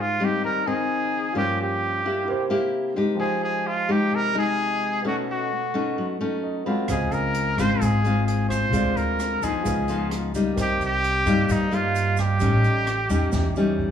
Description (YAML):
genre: bossa nova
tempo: 130 BPM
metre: 4/4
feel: straight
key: unclear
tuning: A4 = 440 Hz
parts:
  - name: trumpet with straight mute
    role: melody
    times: 0.0-13.8 s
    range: Eb4 to C5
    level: -25 LUFS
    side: right 1 dB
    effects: plate reverb
  - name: nylon-string guitar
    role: accompaniment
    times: 0.0-13.9 s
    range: G2 to G4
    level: -25 LUFS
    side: left 3 dB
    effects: none
  - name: warm grand piano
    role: accompaniment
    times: 0.0-13.9 s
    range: F3 to B5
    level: -33 LUFS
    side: right 6 dB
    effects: none
  - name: upright bass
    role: bass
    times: 6.9-13.9 s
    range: Ab1 to G2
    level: -25 LUFS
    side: right 1 dB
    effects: none
  - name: open jazz drum kit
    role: drums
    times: 6.9-13.9 s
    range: hi-hat, kick drum, rim click, snare drum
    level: -32 LUFS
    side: equal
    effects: none
  - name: tube shaker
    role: percussion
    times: 6.9-13.8 s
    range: none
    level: -43 LUFS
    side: right 6 dB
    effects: none
room: moderate studio reverb, RT60 0.7 s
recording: studio reverb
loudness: -21 LUFS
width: side -8 dB against mid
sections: 0.0-13.9 A section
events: grand piano fill 6.2-6.9; drum fill 13.3-13.9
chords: 0.0 Abmaj7; 1.4 Gm7b5; 2.3 C7; 3.2 Fm9; 5.0 B9; 6.9 Dbmaj7; 8.7 Dm7b5; 9.7 Db9; 10.6 Cm7; 12.4 A7#11